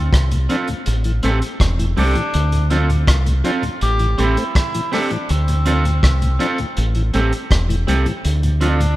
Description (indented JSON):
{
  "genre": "roots reggae",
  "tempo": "81 BPM",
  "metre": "4/4",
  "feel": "straight",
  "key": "D minor",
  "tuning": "A4 = 444 Hz",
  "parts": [
    { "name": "breathy tenor saxophone", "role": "melody", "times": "0.0-9.0 s", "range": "C4 to G4", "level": "-25 LUFS", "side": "equal", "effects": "dub echo" },
    { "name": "deep dub fingered electric bass", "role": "bass", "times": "0.0-8.9 s", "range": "E1 to D2", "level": "-17 LUFS", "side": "equal", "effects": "none" },
    { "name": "crunchy breakbeat drum kit", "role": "drums", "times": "0.1-9.0 s", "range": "hi-hat, kick drum, rim click", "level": "-21 LUFS", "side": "equal", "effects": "none" },
    { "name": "mellow tonewheel organ", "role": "accompaniment", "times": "0.3-8.9 s", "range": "D2 to D4", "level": "-25 LUFS", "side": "left 2 dB", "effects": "slow rotary speaker" },
    { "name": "electric guitar at the edge of break-up", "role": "accompaniment", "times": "0.5-8.8 s", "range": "C4 to A4", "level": "-23 LUFS", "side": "right 3 dB", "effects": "dub echo" }
  ],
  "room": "light reverb, studio reverb",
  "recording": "rough home demo mix",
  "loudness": "-15 LUFS",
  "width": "side -16 dB against mid",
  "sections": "0.0-9.0 A section",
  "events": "none",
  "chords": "0.0 Dm7; 0.9 Am7; 2.3 Dm7; 3.8 Am7; 5.3 Dm7; 6.8 Am7; 8.2 Dm7"
}